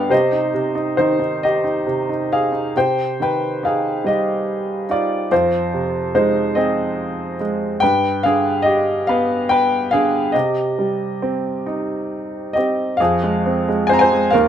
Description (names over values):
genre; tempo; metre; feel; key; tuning
classical, lyrical solo piano; 45-49 BPM (dotted quarters); 6/8; rubato; C harmonic minor; A4 = 440 Hz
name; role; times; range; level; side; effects
clear grand piano; solo; 0.0-14.5 s; Eb2 to Bb5; -16 LUFS; equal; none
room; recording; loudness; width
moderate studio ambience, RT60 0.5 s; minimal, uncompressed stereo recording; -16 LUFS; side -9 dB against mid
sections
0.0-2.8 A section; 2.8-13.0 A section; 13.0-14.5 B section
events
none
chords
0.1 Cm; 5.3 Fm; 7.8 G; 10.3 Cm; 13.0 Fm